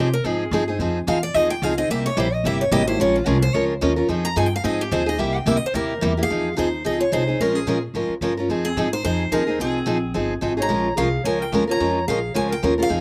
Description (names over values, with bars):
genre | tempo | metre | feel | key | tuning
acoustic string swing (jazz manouche) | 218 BPM | 4/4 | swing 56% on 8ths | F minor | A4 = 439 Hz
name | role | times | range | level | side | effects
picked steel-string acoustic guitar | melody | 0.0-13.0 s | F4 to Bb5 | -27 LUFS | equal | none
picked steel-string acoustic guitar | accompaniment | 0.0-13.0 s | C3 to Bb4 | -24 LUFS | equal | slapback echo
upright bass | bass | 0.0-13.0 s | G1 to C3 | -29 LUFS | equal | none
dark clarinet | second line | 6.2-13.0 s | C4 to Db5 | -31 LUFS | equal | none
room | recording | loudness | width
little or no reverb | recorded outdoors, with no room sound | -21 LUFS | mono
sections
0.0-6.3 A section; 6.3-13.0 B section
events
steel-string acoustic guitar solo 0.0-6.3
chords
0.0 Fm7; 1.9 C7; 3.0 Bbm7; 4.1 Fm7; 5.2 C7#9; 6.3 Fm7; 7.4 Bbm7; 8.5 Fm7; 10.7 Bbm7